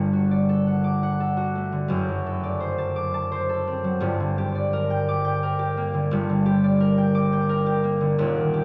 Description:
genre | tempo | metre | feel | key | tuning
classical, solo harp piece | 57 BPM (dotted quarters) | 6/8 | rubato | unclear | A4 = 440 Hz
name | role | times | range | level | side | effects
concert harp | solo | 0.0-8.6 s | Eb1 to D6 | -23 LUFS | equal | none
room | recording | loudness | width
wet cathedral reverb, RT60 5.2 s | none | -23 LUFS | mono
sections
0.0-8.6 A section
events
none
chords
0.0 D/G; 1.9 D7/F#; 4.0 Gm

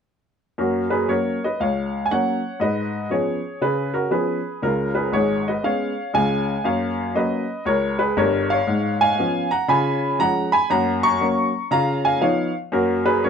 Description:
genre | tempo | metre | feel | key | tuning
jazz, stride piano | 119 BPM | 4/4 | swing 64% on 8ths | F# major | A4 = 441 Hz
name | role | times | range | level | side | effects
clear upright piano | solo | 0.6-13.3 s | G1 to C#6 | -19 LUFS | equal | none
room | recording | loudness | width
moderate club reverb, RT60 0.5 s | none | -19 LUFS | side -7 dB against mid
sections
0.6-13.3 A section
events
none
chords
0.6 F#; 2.6 C#7/G#; 4.6 C#7; 6.6 F#; 8.7 C#7/G#; 9.7 C#7; 10.7 F#; 11.7 C#9; 12.7 F#

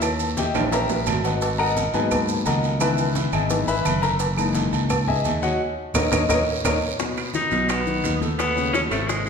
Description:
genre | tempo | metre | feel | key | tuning
Afro-Cuban jazz | 172 BPM | 4/4 | straight | unclear | A4 = 440 Hz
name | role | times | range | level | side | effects
clear baby grand piano | accompaniment | 0.0-9.3 s | B2 to B5 | -24 LUFS | left 4 dB | none
fingered electric bass | bass | 0.0-9.3 s | F#1 to G#2 | -26 LUFS | right 1 dB | none
agogo bells and timbales | percussion | 0.0-9.3 s | none | -28 LUFS | right 4 dB | none
claves | percussion | 0.0-9.1 s | none | -34 LUFS | right 4 dB | none
congas | percussion | 0.0-9.3 s | none | -31 LUFS | right 1 dB | none
cowbell and bongos | percussion | 0.0-9.3 s | none | -31 LUFS | left 2 dB | none
guiro | percussion | 0.0-9.3 s | none | -36 LUFS | right 6 dB | none
maracas | percussion | 0.0-9.3 s | none | -34 LUFS | right 7 dB | none
bright tenor saxophone | melody | 7.3-9.3 s | G#3 to D#4 | -23 LUFS | left 1 dB | none
room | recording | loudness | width
wet recital hall reverb, RT60 1.6 s | recorded in a church or concert hall | -20 LUFS | side -6 dB against mid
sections
0.0-7.0 A section; 7.0-9.3 B section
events
grand piano solo 0.0-7.0; drum fill 0.5-1.4, 5.6-7.0; band accent 5.6-7.0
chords
0.0 D#7b9; 1.4 G#m9; 2.8 C#m9; 4.2 F#13; 5.6 D#5; 7.0 B7; 8.4 B13

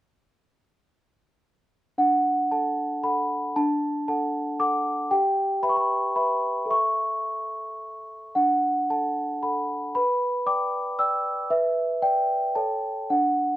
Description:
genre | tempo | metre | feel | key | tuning
classical, lullaby for celesta | 113 BPM | 3/4 | rubato | D major | A4 = 440 Hz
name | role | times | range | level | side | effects
large celesta | solo | 2.0-13.6 s | D4 to E6 | -22 LUFS | equal | none
room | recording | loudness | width
little or no reverb | close, detailed microphones | -22 LUFS | side -15 dB against mid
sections
2.0-13.6 A section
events
none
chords
2.0 D; 5.1 Em/G; 6.7 A; 8.4 D; 9.9 G/B; 12.6 A7

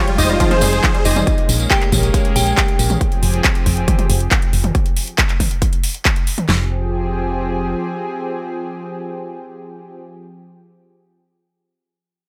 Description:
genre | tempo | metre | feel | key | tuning
uplifting trance | 138 BPM | 4/4 | straight | F minor | A4 = 441 Hz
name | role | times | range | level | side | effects
supersaw chords | melody | 0.0-1.2 s | F4 to Eb5 | -23 LUFS | equal | sidechain pumping, delay
clear grand piano | second line | 0.0-1.2 s | F4 to Eb5 | -31 LUFS | equal | none
glassy synth bell | second line | 0.0-2.9 s | Eb4 to G5 | -25 LUFS | equal | chorus, dub echo
lush unison pad | sustained chords | 0.0-10.0 s | F3 to G5 | -27 LUFS | equal | chorus, sidechain pumping
unison pluck | arpeggios | 0.0-1.2 s | F3 to G4 | -28 LUFS | equal | sidechain pumping, dub echo
big-room dance drum kit | drums | 0.1-6.5 s | handclaps, hi-hat, toms | -22 LUFS | equal | none
solid FM bass | bass | 0.2-7.8 s | F1 to Bb1 | -21 LUFS | equal | sidechain pumping
big-room dance drum kit | drums | 0.2-6.6 s | handclaps, kick drum, snare drum | -20 LUFS | equal | none
tambourine | percussion | 0.2-3.0 s | none | -28 LUFS | equal | none
room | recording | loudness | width
light reverb | none | -17 LUFS | mono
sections
0.0-6.5 A section; 6.5-10.0 B section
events
drop 0.0-6.5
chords
0.0 Fmadd9; 1.3 Bbm7; 3.0 Fmadd9; 4.7 N.C.; 6.5 Fmadd9

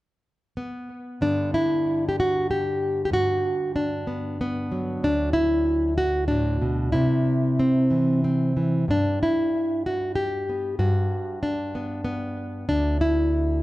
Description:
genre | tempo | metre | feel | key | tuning
folk, solo fingerstyle acoustic guitar | 94 BPM | 3/4 | rubato | unclear | A4 = 440 Hz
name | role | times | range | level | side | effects
nylon-string guitar | solo | 0.6-13.6 s | D2 to G4 | -21 LUFS | equal | tape echo
room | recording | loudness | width
moderate large studio reverb, RT60 1.1 s | dark, warm production | -21 LUFS | side -17 dB against mid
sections
0.0-1.2 A section; 1.2-13.6 B section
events
none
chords
0.0 N.C.; 1.2 Gmaj7; 5.0 D; 6.9 C; 8.9 Gmaj7; 12.7 N.C.

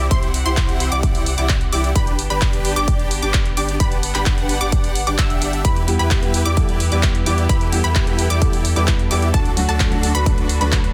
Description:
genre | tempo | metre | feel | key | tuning
EDM, festival progressive house | 130 BPM | 4/4 | straight | E minor | A4 = 439 Hz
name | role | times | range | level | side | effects
bright symphonic string section | sustained chords | 0.0-10.9 s | C3 to F#5 | -32 LUFS | equal | sidechain pumping
unison pluck | arpeggios | 0.0-10.8 s | A5 to E6 | -28 LUFS | equal | sidechain pumping, dub echo
dense compressed supersaw | riff | 0.0-10.8 s | D4 to E5 | -27 LUFS | equal | sidechain pumping, dub echo
saturated sub bass | bass | 0.0-10.9 s | G1 to E2 | -24 LUFS | equal | sidechain pumping
big-room dance drum kit | drums | 0.1-10.9 s | handclaps, hi-hat | -27 LUFS | equal | studio reverb
electronic kick drum | drums | 0.1-10.8 s | none | -21 LUFS | equal | studio reverb
felt-muted upright piano | accompaniment | 5.9-10.9 s | F#3 to B4 | -27 LUFS | equal | sidechain pumping, dub echo
room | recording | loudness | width
light reverb | dense, heavily limited modern master | -18 LUFS | mono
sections
0.0-10.9 A section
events
none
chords
0.0 C; 2.0 G; 5.6 Em; 9.3 D

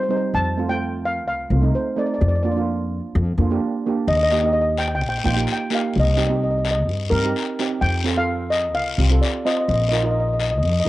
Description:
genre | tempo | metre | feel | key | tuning
calypso | 128 BPM | 4/4 | straight | unclear | A4 = 439 Hz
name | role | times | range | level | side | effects
steel pan | melody | 0.0-10.9 s | Bb4 to A5 | -22 LUFS | left 1 dB | cassette tape
steel pan | accompaniment | 0.1-10.9 s | G3 to C5 | -25 LUFS | right 5 dB | cassette tape
upright bass | bass | 0.3-10.9 s | Bb1 to G2 | -21 LUFS | left 1 dB | none
guiro | percussion | 4.1-10.9 s | none | -29 LUFS | left 7 dB | none
room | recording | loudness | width
light reverb, small room ambience | home recording on cassette | -18 LUFS | side -16 dB against mid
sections
0.0-10.9 A section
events
none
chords
0.3 F7; 2.2 Bb/F; 4.1 Eb; 6.0 Cm7; 7.8 F; 9.7 Bbsus4

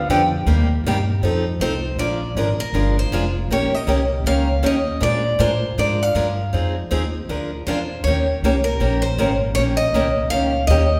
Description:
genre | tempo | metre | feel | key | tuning
acoustic string swing (jazz manouche) | 158 BPM | 4/4 | swing 61% on 8ths | unclear | A4 = 440 Hz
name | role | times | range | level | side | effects
picked steel-string acoustic guitar | accompaniment | 0.1-10.8 s | C3 to Bb4 | -24 LUFS | equal | none
upright bass | bass | 0.1-11.0 s | F1 to Bb2 | -24 LUFS | equal | none
picked steel-string acoustic guitar | melody | 1.6-11.0 s | Bb4 to F5 | -25 LUFS | equal | none
room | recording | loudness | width
wet recital hall reverb, RT60 1.4 s | recorded in a church or concert hall | -20 LUFS | mono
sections
0.0-2.0 A section; 2.0-11.0 B section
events
none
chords
0.5 Cm7; 1.2 F7; 2.0 Bb7; 3.5 Eb7; 5.0 Bb7; 6.5 Fm7; 7.3 Bb7; 8.0 Eb7

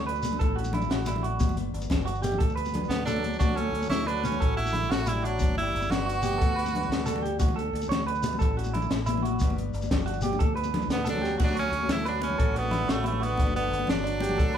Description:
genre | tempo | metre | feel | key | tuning
highlife guitar band | 120 BPM (dotted quarters) | 12/8 | straight | D major | A4 = 443 Hz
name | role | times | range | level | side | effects
flamenco guitar | accompaniment | 0.0-14.6 s | G2 to F#4 | -40 LUFS | left 6 dB | none
clean electric guitar | arpeggios | 0.0-14.6 s | D4 to C#5 | -31 LUFS | right 5 dB | none
fingered electric bass | bass | 0.0-14.6 s | G1 to D2 | -32 LUFS | equal | none
compact cocktail drum kit | drums | 0.1-14.5 s | crash cymbal, hi-hat, kick drum, snare drum | -28 LUFS | left 1 dB | none
shekere | percussion | 0.1-11.2 s | none | -38 LUFS | left 1 dB | none
congas | percussion | 0.2-14.4 s | none | -33 LUFS | left 3 dB | none
edgy tenor saxophone | melody | 2.9-7.2, 10.9-14.6 s | A3 to F#4 | -30 LUFS | right 2 dB | none
growling trombone | second line | 2.9-7.3, 10.9-14.6 s | C#3 to B3 | -38 LUFS | left 4 dB | none
room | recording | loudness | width
moderate large studio reverb, RT60 0.9 s | band playing live in one room | -24 LUFS | side -9 dB against mid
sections
0.0-11.4 A section; 11.4-14.6 A section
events
drum fill 11.2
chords
0.0 Dmaj7; 1.4 Gmaj7; 3.4 Dmaj7; 5.4 Gmaj7; 7.4 Dmaj7; 9.4 Gmaj7; 11.4 Dmaj7; 13.4 Gmaj7

